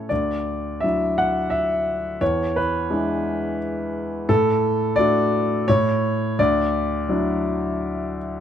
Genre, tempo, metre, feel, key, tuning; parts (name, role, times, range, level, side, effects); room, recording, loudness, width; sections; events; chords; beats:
classical, lyrical solo piano; 86 BPM; 3/4; rubato; D major; A4 = 440 Hz
warm grand piano; solo; 0.0-8.4 s; D2 to F#5; -20 LUFS; left 1 dB
light reverb; close, detailed microphones; -20 LUFS; side -9 dB against mid
0.0-8.4 A section
0.1 Dadd9; 2.2 E7; 4.3 D/A; 5.7 N.C.; 6.4 Dadd9
| 0.10 0.82 1.52 | 2.21 2.90 3.60 | 4.29 4.98 5.68 | 6.38 7.09 7.81